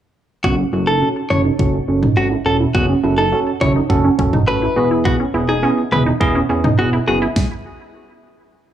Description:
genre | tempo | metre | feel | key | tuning
synth-pop | 104 BPM | 4/4 | straight | F# dorian | A4 = 439 Hz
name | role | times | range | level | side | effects
direct-recorded clean electric guitar | second line | 0.4-7.2 s | F#4 to C#5 | -20 LUFS | left 1 dB | analog delay
barky tine electric piano | accompaniment | 0.4-7.3 s | B3 to A4 | -20 LUFS | right 4 dB | low-pass filter
resonant blip pluck | arpeggios | 0.4-7.3 s | B3 to F#4 | -22 LUFS | right 1 dB | chorus, low-pass filter, analog delay
chorused synth bass | bass | 0.4-7.3 s | E1 to A1 | -20 LUFS | equal | none
pop drum kit | drums | 0.4-7.5 s | kick drum, snare drum, toms | -19 LUFS | equal | none
room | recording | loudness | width
little or no reverb | dry, gritty hardware recording, cassette tape, small room reverb | -14 LUFS | side -10 dB against mid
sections
0.4-8.7 A section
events
filter sweep 0.4-8.7; stop 7.4-8.7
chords
0.4 F#m; 4.8 E

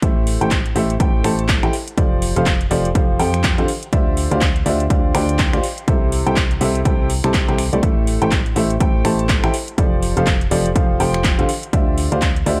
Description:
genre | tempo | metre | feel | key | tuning
piano house | 123 BPM | 4/4 | swing 59% on 16ths | A minor | A4 = 440 Hz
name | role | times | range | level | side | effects
clear upright piano | riff | 0.0-12.6 s | C3 to A5 | -23 LUFS | equal | sidechain pumping
solid FM bass | bass | 0.0-12.6 s | F1 to F2 | -23 LUFS | equal | sidechain pumping
electronic kick drum | drums | 0.0-12.3 s | none | -21 LUFS | equal | overdrive
house drum kit | drums | 0.0-12.6 s | finger snaps, handclaps, hi-hat | -26 LUFS | equal | none
room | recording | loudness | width
little or no reverb | none | -17 LUFS | mono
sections
0.0-12.6 A section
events
none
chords
0.0 Am7; 1.7 F69; 3.7 Dm11; 5.6 C6; 7.8 Am7; 9.5 F69; 11.5 Dm11

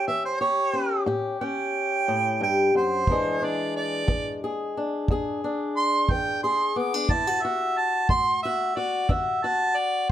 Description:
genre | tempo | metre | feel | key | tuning
acoustic country blues, solo or duo | 60 BPM (dotted quarters) | 12/8 | straight | unclear | A4 = 440 Hz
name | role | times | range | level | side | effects
mellow harmonica | melody | 0.0-10.1 s | C5 to D6 | -24 LUFS | right 3 dB | none
fingerpicked swing-style acoustic guitar | accompaniment | 0.0-10.1 s | E2 to G#4 | -26 LUFS | left 3 dB | none
kick drum | drums | 3.1-10.1 s | none | -25 LUFS | equal | none
room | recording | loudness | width
moderate studio reverb, RT60 0.8 s | none | -22 LUFS | side -11 dB against mid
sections
0.0-10.1 A section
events
harmonica solo 0.0-10.1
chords
0.0 A7; 3.1 E7; 7.1 D

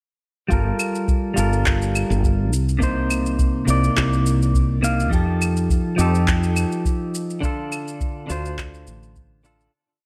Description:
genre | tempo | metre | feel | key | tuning
sunset chillout | 104 BPM | 4/4 | swing 54% on 16ths | G minor | A4 = 438 Hz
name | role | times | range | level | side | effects
clean electric guitar | accompaniment | 0.5-9.7 s | C3 to F5 | -25 LUFS | equal | low-pass filter, tape echo
woody fretless electric bass | bass | 0.5-9.7 s | G1 to F2 | -24 LUFS | equal | lush chorus
electronic kick drum | drums | 0.5-9.3 s | none | -24 LUFS | equal | studio reverb
electronic shaker, claves and handclaps | drums | 0.5-9.7 s | none | -29 LUFS | equal | studio reverb
room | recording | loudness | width
light reverb, digital ambience | none | -21 LUFS | mono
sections
0.5-9.7 groove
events
filter sweep on clean electric guitar 0.5-9.7; fade-out 6.7-9.7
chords
0.5 Gm9; 2.5 Cm9; 5.1 F9; 7.4 Dm7

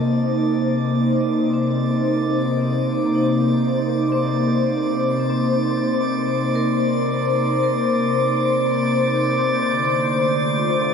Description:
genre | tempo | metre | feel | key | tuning
ambient | free time | none | none | C dorian | A4 = 440 Hz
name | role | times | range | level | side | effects
airy breathy pad | sustained chords | 0.0-10.9 s | C3 to C5 | -18 LUFS | left 1 dB | chorus, shimmer reverb
vibraphone with medium hard mallets | arpeggios | 0.0-9.7 s | Bb3 to A5 | -29 LUFS | equal | ping-pong delay, shimmer reverb
drifting glass-harmonics texture | texture | 0.0-10.9 s | D5 to D6 | -26 LUFS | right 2 dB | chorus, built-in reverb, shimmer reverb
room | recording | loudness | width
wet cathedral reverb, RT60 7.0 s | none | -17 LUFS | side -6 dB against mid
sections
0.0-10.9 A section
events
fade-in on vibraphone 0.0-10.9; fade-in on synth texture 0.0-10.9; filter sweep on analog synth pad 0.0-10.9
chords
0.0 Cm7; 9.7 Dm7

